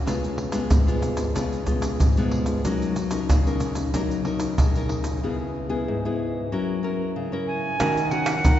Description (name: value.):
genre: samba and choro.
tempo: 93 BPM.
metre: 4/4.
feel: straight.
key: unclear.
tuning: A4 = 440 Hz.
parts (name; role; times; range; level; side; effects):
nylon-string guitar; accompaniment; 0.0-8.6 s; Ab2 to Bb4; -25 LUFS; left 2 dB; none.
egg shaker, surdo, pandeiro and tamborim; percussion; 0.1-8.6 s; none; -23 LUFS; equal; none.
jazz flute; melody; 7.5-8.6 s; Gb5 to Ab5; -25 LUFS; right 3 dB; none.
nylon-string guitar; bass; 7.8-8.6 s; Eb3; -25 LUFS; right 1 dB; none.
room: wet cathedral reverb, RT60 4.1 s.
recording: recorded in a church or concert hall, nothing above 7.8 kHz.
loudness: -22 LUFS.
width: side -12 dB against mid.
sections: 0.0-7.8 A section.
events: break 5.2-7.8.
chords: 0.1 Db7; 2.6 Gb6; 5.2 Dbm7; 6.5 Gb7; 7.8 Ebm7.